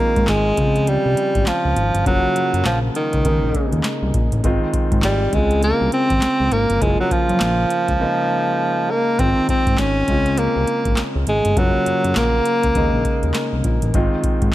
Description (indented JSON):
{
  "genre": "R&B, new jack swing",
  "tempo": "101 BPM",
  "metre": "4/4",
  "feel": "swing 61% on 16ths",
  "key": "Ab major",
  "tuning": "A4 = 440 Hz",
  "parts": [
    { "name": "bright alto saxophone", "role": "melody", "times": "0.0-13.3 s", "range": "Eb3 to Db4", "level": "-19 LUFS", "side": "equal", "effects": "none" },
    { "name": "warm concert grand piano", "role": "accompaniment", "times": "0.0-14.5 s", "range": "Db3 to F4", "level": "-24 LUFS", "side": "equal", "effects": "none" },
    { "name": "fat analog bass", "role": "bass", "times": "0.0-14.5 s", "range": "Gb1 to Ab2", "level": "-21 LUFS", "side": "equal", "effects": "none" },
    { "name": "booming analog drum machine", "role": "drums", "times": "0.2-14.5 s", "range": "handclaps, hi-hat, kick drum, snare drum", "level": "-22 LUFS", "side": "equal", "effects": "overdrive" }
  ],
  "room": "light reverb, digital ambience",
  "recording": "none",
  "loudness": "-16 LUFS",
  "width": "side -15 dB against mid",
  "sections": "0.0-14.5 A section",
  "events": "drums muted 8.0-9.2",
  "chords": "0.0 Ab6; 0.6 Dbmaj7; 2.1 Gbmaj7; 3.3 Eb7sus4; 4.4 Ab6; 5.3 Dbmaj7; 6.8 Gbmaj7; 8.0 Eb7sus4; 9.2 Ab6; 10.1 Dbmaj7; 11.6 Gbmaj7; 12.8 Eb7sus4; 13.9 Ab6",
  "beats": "0.28 0.88 1.47 | 2.06 2.66 3.25 3.85 | 4.44 5.03 5.63 6.22 | 6.82 7.41 8.01 8.60 | 9.19 9.79 10.38 10.97 | 11.57 12.16 12.76 13.35 | 13.95 14.54"
}